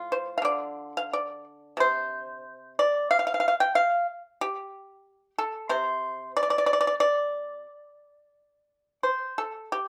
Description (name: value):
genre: chinese traditional, Chinese solo plucked strings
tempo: 91 BPM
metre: 4/4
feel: rubato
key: D yu mode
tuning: A4 = 440 Hz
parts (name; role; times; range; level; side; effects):
- pipa; solo; 0.0-9.9 s; A2 to G5; -27 LUFS; equal; slapback echo
room: little or no reverb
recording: recorded outdoors, with no room sound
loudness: -27 LUFS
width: mono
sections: 0.0-9.7 A section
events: none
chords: none